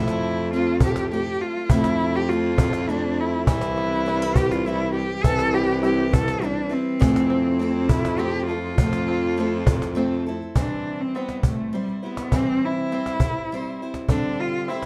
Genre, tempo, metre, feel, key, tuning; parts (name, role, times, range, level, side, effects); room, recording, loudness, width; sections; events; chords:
acoustic folk duo or small band; 102 BPM; 3/4; straight; C major; A4 = 441 Hz
warm cello; melody; 0.0-14.9 s; G3 to A4; -28 LUFS; equal
picked steel-string acoustic guitar; accompaniment; 0.0-14.9 s; C3 to C5; -30 LUFS; equal
clear baritone saxophone; bass; 0.0-10.5 s; C2 to F2; -28 LUFS; equal
cajon; percussion; 0.1-14.9 s; -25 LUFS; equal
bluegrass banjo; arpeggios; 3.5-14.9 s; D3 to E4; -38 LUFS; equal
moderate studio reverb, RT60 0.7 s; dark, warm production; -23 LUFS; mono
0.0-10.5 A section; 10.5-14.9 B section
0.0 Fmaj7; 3.5 Cmaj7; 7.0 Fmaj7; 10.5 C; 14.1 Gsus4/D